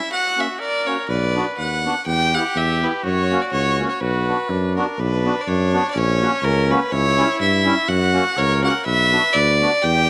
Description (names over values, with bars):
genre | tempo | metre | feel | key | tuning
alpine folk, alpine dance band | 124 BPM | 2/4 | swing 55% on 8ths | B harmonic minor | A4 = 438 Hz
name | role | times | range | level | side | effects
clear fiddle | melody | 0.0-10.1 s | A#4 to G5 | -22 LUFS | equal | none
bright trumpet | second line | 0.0-10.1 s | C#4 to B4 | -29 LUFS | equal | none
accordion | accompaniment | 0.4-9.7 s | G3 to G4 | -28 LUFS | equal | light tremolo tuning
mellow tuba | bass | 1.1-10.1 s | A#1 to G2 | -23 LUFS | equal | none
room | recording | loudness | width
moderate plate reverb, RT60 2.9 s | none | -19 LUFS | mono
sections
0.0-5.0 A section; 5.0-10.1 A section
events
none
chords
0.1 F#; 1.1 Bm; 2.1 Em; 3.0 F#; 4.0 Bm; 6.0 F#/A#; 6.9 C#dim; 7.9 F#; 8.9 Bm